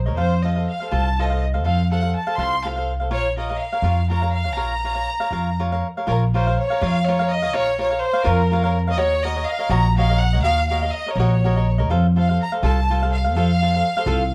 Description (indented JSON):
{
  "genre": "mexican folk, mariachi",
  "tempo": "82 BPM (dotted quarters)",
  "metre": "6/8",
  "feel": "rubato",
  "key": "Bb harmonic minor",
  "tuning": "A4 = 440 Hz",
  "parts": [
    { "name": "upright bass", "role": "bass", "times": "0.0-14.3 s", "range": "Bb1 to F2", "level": "-22 LUFS", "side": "equal", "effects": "none" },
    { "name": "cavaquinho", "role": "accompaniment", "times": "0.1-14.2 s", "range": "F4 to F5", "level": "-28 LUFS", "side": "equal", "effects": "none" },
    { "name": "clear chamber violin section", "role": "melody", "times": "0.2-14.3 s", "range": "Bb4 to C6", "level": "-26 LUFS", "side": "equal", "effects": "plate reverb" }
  ],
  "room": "light reverb",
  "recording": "none",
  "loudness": "-20 LUFS",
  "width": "mono",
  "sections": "0.0-6.1 A section; 6.1-14.3 A section",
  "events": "none",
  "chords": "0.2 F; 3.1 Bbm; 9.0 Ebm7; 11.9 F",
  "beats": "| 0.17 0.92 | 1.66 2.39 | 3.12 3.84 | 4.57 5.32 | 6.08 6.81 | 7.54 8.26 | 8.97 9.69 | 10.42 11.15 | 11.89 12.62 | 13.34 14.06"
}